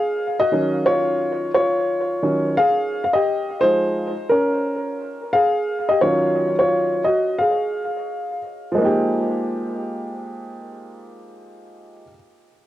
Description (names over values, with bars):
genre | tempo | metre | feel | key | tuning
hip hop | 87 BPM | 4/4 | swing 65% on 16ths | unclear | A4 = 444 Hz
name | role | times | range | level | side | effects
warm upright piano | solo | 0.0-12.1 s | Eb3 to F5 | -18 LUFS | equal | cassette tape, analog delay
room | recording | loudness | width
moderate studio ambience, RT60 0.5 s | home recording on cassette | -18 LUFS | side -14 dB against mid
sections
0.0-8.8 A section; 8.8-11.5 B section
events
upright piano solo 0.0-8.8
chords
0.0 Fm7; 0.5 Ebm11; 3.3 Fm11; 6.0 Ebm11; 8.8 Fm11